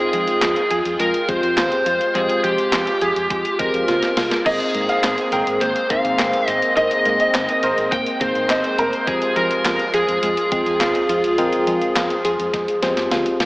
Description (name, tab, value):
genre	synth-pop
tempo	104 BPM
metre	4/4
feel	straight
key	unclear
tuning	A4 = 441 Hz
part	lead guitar through a small cranked amp	melody	0.0-13.1 s	G4 to G5	-20 LUFS	equal	overdrive, wide subtle chorus, tape echo
part	bell-like tine electric piano	accompaniment	0.0-13.4 s	Ab3 to G5	-25 LUFS	left 1 dB	analog chorus
part	phased analog pad	sustained chords	0.0-13.5 s	F3 to G5	-24 LUFS	equal	phaser, chorus
part	wide unison pluck	arpeggios	0.0-13.5 s	Ab3 to Bb4	-26 LUFS	equal	tape echo
part	vintage muted fingered electric bass	bass	0.1-13.5 s	F1 to F3	-34 LUFS	equal	none
part	clean 12-bit digital drum machine	drums	0.1-13.5 s	crash cymbal, handclaps, hi-hat, kick drum, snare drum	-25 LUFS	equal	none
part	clear grand piano	second line	4.5-8.9 s	Bb4 to G5	-24 LUFS	right 1 dB	tape echo
room	wet plate reverb, RT60 3.6 s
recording	dreamy mix soaked in reverb, AM radio sound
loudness	-16 LUFS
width	side -22 dB against mid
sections	0.0-13.5 A section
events	drum fill 3.9-4.5, 12.5-13.5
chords	0.0 Fmadd9; 4.5 Abadd9; 9.1 Fmadd9